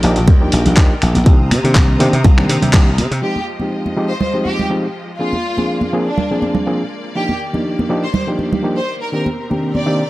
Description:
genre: nu-disco, nu disco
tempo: 122 BPM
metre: 4/4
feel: swing 54% on 16ths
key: unclear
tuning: A4 = 440 Hz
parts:
  - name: overdriven reed electric piano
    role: accompaniment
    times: 0.0-10.0 s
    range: Eb3 to Ab4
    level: -19 LUFS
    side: equal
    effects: sidechain pumping, low-pass filter
  - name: bright studio string section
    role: sustained chords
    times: 0.0-10.1 s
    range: C3 to Eb6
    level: -28 LUFS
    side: equal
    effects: sidechain pumping
  - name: dry thumbed slap bass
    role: bass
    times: 0.0-3.2 s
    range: Bb1 to C3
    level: -15 LUFS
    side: equal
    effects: none
  - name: dusty soul sampler-style drum kit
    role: drums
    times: 0.0-3.2 s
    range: finger snaps, handclaps, hi-hat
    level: -21 LUFS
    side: equal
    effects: low-pass filter on hats, low-pass filter on snare, low-pass filter on room
  - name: electronic kick drum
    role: drums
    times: 0.3-2.8 s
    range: none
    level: -10 LUFS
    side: equal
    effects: none
  - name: congas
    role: percussion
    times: 0.3-9.8 s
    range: none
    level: -22 LUFS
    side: right 2 dB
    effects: none
  - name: bright symphonic violin section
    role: melody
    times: 3.2-10.1 s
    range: D4 to D5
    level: -23 LUFS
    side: equal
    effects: tape echo
room: little or no reverb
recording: dry, gritty hardware recording, transformer saturation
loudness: -13 LUFS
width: side -18 dB against mid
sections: 0.0-3.2 A section; 3.2-10.1 B section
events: filter sweep on reed electric piano 0.0-3.2; band accent 2.7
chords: 0.0 Ebmaj7; 1.3 Cm7; 3.2 Fm7; 5.2 Bb7; 7.2 Ebmaj7; 9.1 Cm7

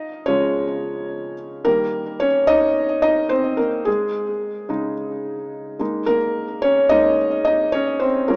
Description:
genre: pop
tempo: 108 BPM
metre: 4/4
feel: straight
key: Eb mixolydian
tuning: A4 = 440 Hz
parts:
  - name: felt-muted upright piano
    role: solo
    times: 0.0-8.4 s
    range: Bb2 to Eb5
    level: -20 LUFS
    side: equal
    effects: digital delay
room: wet lush hall reverb, RT60 2.5 s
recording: rough home demo mix, small speaker sound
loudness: -20 LUFS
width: mono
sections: 0.0-1.7 A section; 1.7-8.4 B section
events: felt piano solo 0.0-1.7, 1.7-8.4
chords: 0.0 Db; 1.7 Eb; 3.9 Dbsus2; 5.8 Absus2

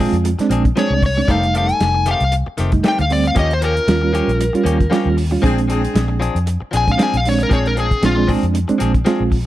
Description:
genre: straight-eighth soul blues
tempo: 116 BPM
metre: 4/4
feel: swing 56% on 16ths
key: Bb mixolydian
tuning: A4 = 443 Hz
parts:
  - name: reed electric piano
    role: accompaniment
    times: 0.0-9.4 s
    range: G3 to F4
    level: -19 LUFS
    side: right 4 dB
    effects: fast tremolo
  - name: direct-recorded clean electric guitar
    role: stabs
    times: 0.0-9.3 s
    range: Eb3 to Ab4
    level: -25 LUFS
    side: left 5 dB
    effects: none
  - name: vintage muted fingered electric bass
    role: bass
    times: 0.0-9.5 s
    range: F1 to F2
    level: -19 LUFS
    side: equal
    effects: none
  - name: warm soul drum kit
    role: drums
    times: 0.1-9.5 s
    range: hi-hat, kick drum, snare drum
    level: -20 LUFS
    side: equal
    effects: none
  - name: overdriven slide guitar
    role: melody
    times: 0.8-8.3 s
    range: F4 to Ab5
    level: -19 LUFS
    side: left 2 dB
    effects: none
  - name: mellow horn section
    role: sustained chords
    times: 1.3-8.3 s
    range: G3 to Bb4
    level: -28 LUFS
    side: left 3 dB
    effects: none
room: light reverb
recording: none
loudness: -14 LUFS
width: side -14 dB against mid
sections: 0.0-9.5 A section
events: none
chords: 0.0 Bb9; 1.3 F9; 3.4 Eb9; 5.4 Bb9

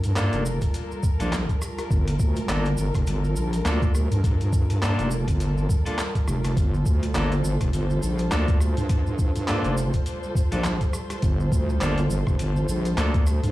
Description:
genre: glitch hop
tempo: 103 BPM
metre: 4/4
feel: swing 57% on 16ths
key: G minor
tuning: A4 = 439 Hz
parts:
  - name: dark studio string section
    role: sustained chords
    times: 0.0-13.5 s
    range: G3 to C5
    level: -32 LUFS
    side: equal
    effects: sidechain pumping
  - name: wobble bass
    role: bass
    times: 0.0-13.5 s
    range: F1 to G2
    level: -23 LUFS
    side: equal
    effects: chorus, tube saturation
  - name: boom bap sampler-style drum kit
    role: drums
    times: 0.0-13.5 s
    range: handclaps, hi-hat, rim click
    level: -34 LUFS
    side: equal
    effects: none
  - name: cabasa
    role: percussion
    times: 0.0-13.5 s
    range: none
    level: -42 LUFS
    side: right 2 dB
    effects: none
  - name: clean electric guitar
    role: stabs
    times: 0.2-13.2 s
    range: Bb3 to A4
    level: -30 LUFS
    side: equal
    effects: sidechain pumping, ping-pong delay
  - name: electronic kick drum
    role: drums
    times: 0.6-13.2 s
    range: none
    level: -23 LUFS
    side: equal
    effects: none
room: little or no reverb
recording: played on a big sound system in a bare room, large studio reverb, vinyl crackle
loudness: -21 LUFS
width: side -16 dB against mid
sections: 0.0-13.5 A section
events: none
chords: 0.0 Gm9

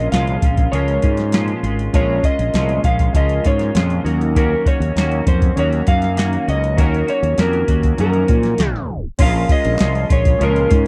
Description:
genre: indie pop, bedroom pop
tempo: 99 BPM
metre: 4/4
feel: straight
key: Bb minor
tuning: A4 = 440 Hz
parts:
  - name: electric slide guitar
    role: melody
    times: 0.0-10.9 s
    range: Bb4 to F5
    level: -23 LUFS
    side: equal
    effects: subtle chorus
  - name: clean electric guitar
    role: accompaniment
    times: 0.0-10.9 s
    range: Bb2 to Gb4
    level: -27 LUFS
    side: equal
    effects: analog chorus, vibrato effect
  - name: warm analog keys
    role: accompaniment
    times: 0.0-10.9 s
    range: F3 to Db5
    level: -28 LUFS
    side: equal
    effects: chorus, cassette tape
  - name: fretless electric bass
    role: bass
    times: 0.0-10.9 s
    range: Ab1 to Bb2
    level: -21 LUFS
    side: equal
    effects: none
  - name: soft vintage rhythm box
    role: drums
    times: 0.1-10.8 s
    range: crash cymbal, hi-hat, kick drum, snare drum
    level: -19 LUFS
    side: equal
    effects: overdrive
  - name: group handclap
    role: percussion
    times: 9.8-9.9 s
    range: none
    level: -37 LUFS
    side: equal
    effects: none
room: little or no reverb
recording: dry, close 1970s-style studio recording, tape stop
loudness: -17 LUFS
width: mono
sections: 0.0-9.2 A section; 9.2-10.9 B section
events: tape stop 8.6-9.2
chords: 0.0 Bbm7; 4.1 Ebm7; 9.2 Bbm7

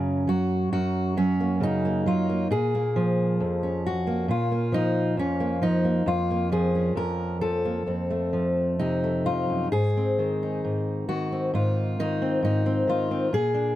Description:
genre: folk, solo fingerstyle acoustic guitar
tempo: 67 BPM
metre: 4/4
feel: rubato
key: Bb minor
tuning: A4 = 441 Hz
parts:
  - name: fingerpicked steel-string acoustic guitar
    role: solo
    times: 0.0-13.8 s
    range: F2 to Bb4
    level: -23 LUFS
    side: equal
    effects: none
room: light reverb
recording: close, detailed microphones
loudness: -23 LUFS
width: side -14 dB against mid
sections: 0.0-13.8 A section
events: none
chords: 0.0 Gb; 2.5 Bbm/F; 7.9 F; 9.7 Ab

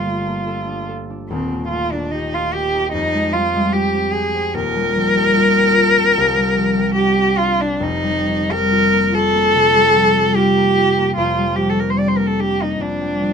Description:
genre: classical, impressionist duo for cello and harp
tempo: 73 BPM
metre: 4/4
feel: rubato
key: unclear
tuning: A4 = 440 Hz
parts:
  - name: dark cello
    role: melody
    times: 0.0-13.3 s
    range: C4 to D5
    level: -16 LUFS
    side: equal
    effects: none
  - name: concert harp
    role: accompaniment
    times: 0.0-13.3 s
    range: Eb1 to A4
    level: -19 LUFS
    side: left 1 dB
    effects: none
room: little or no reverb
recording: close, detailed microphones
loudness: -14 LUFS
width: side -6 dB against mid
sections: 0.0-13.3 A section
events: none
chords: 0.0 Gmadd9; 1.3 Eb; 2.9 Fm9; 4.6 Eb69; 6.2 Cmadd9; 7.8 F9sus4; 11.2 Gm7/F

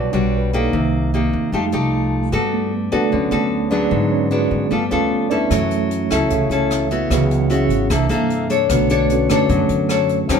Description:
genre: bossa nova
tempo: 151 BPM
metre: 4/4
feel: straight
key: unclear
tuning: A4 = 438 Hz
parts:
  - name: mellow tine electric piano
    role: accompaniment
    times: 0.0-10.4 s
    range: D3 to E5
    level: -20 LUFS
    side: right 2 dB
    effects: medium stereo tremolo
  - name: nylon-string guitar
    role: accompaniment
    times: 0.0-10.4 s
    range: G#2 to C#5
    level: -19 LUFS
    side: left 2 dB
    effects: none
  - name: upright bass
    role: bass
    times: 0.0-10.4 s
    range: G#1 to G#2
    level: -23 LUFS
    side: right 1 dB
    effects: none
  - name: jazz brush drum kit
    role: drums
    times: 5.5-10.4 s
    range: hi-hat, kick drum, rim click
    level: -26 LUFS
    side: left 1 dB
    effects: none
room: moderate stone room reverb, RT60 1.2 s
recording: band playing live in one room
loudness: -16 LUFS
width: side -6 dB against mid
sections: 0.0-10.4 A section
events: tine electric piano solo 0.0-10.4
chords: 0.0 Em9 (rootless); 0.7 Cm7; 1.5 F9; 2.3 Gmaj9; 3.9 G#m7b5; 4.7 G9; 5.5 F#m7; 7.1 C#m7; 7.9 C13; 8.7 Bm9

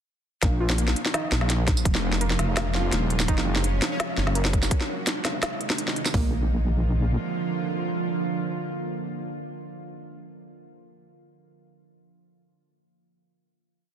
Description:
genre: half-time drum and bass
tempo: 168 BPM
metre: 4/4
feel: half-time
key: Bb minor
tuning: A4 = 441 Hz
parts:
  - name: bowed-like drone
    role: sustained chords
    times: 1.0-9.3 s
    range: D3 to F4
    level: -30 LUFS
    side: right 3 dB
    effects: built-in reverb, sidechain pumping
  - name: warbly dusty pluck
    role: arpeggios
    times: 0.4-6.3 s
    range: Bb3 to Bb4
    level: -34 LUFS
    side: right 1 dB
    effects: chorus, cassette tape, digital delay
  - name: deep soft wobble bass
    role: bass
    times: 0.4-7.2 s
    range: Eb1 to Bb1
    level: -24 LUFS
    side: equal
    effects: chorus
  - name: drum and bass drum kit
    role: drums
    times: 0.4-6.2 s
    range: hi-hat, kick drum, toms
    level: -24 LUFS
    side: equal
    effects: overdrive
  - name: organic electronic drum kit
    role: drums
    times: 0.4-6.1 s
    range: hi-hat, snare drum, tambourine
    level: -26 LUFS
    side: equal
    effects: soft clipping on snare
  - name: pulsing gated texture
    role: texture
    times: 3.7-4.7 s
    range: Db4 to Db5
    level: -38 LUFS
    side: left 3 dB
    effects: chorus, built-in reverb
room: little or no reverb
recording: dense, heavily limited modern master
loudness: -22 LUFS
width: side -9 dB against mid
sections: 0.4-6.1 drop; 6.1-9.0 final chord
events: drop 0.4-6.1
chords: 0.4 Bbm; 1.9 Fm; 3.3 Gb; 4.7 Ab; 6.1 Bb

